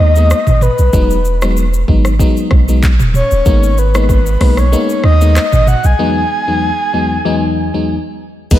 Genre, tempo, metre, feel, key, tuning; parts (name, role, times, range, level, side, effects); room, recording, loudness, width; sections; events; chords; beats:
afrobeats; 95 BPM; 4/4; swing 55% on 16ths; A4 = 440 Hz
breathy flute-like synth lead; melody; 0.0-8.6 s; B4 to G#5; -16 LUFS; left 1 dB; chorus, analog delay
FM electric piano; accompaniment; 0.0-8.6 s; E2 to D#4; -17 LUFS; left 2 dB; chorus
punchy sub bass; bass; 0.0-8.6 s; D#1 to D#2; -11 LUFS; equal
afro-pop drum kit; drums; 0.2-8.6 s; crash cymbal, handclaps, hi-hat, kick drum, rim click, shaker, toms; -15 LUFS; equal
light reverb; -10 LUFS; side -13 dB against mid
0.0-8.5 A section
break 6.0-8.5
0.0 G#madd9; 0.9 Emaj7; 3.5 G#madd9; 6.0 Emaj7
0.30 | 0.93 1.56 2.20 2.83 | 3.46 4.09 4.72 5.36 | 5.99 6.62 7.25 7.88 | 8.51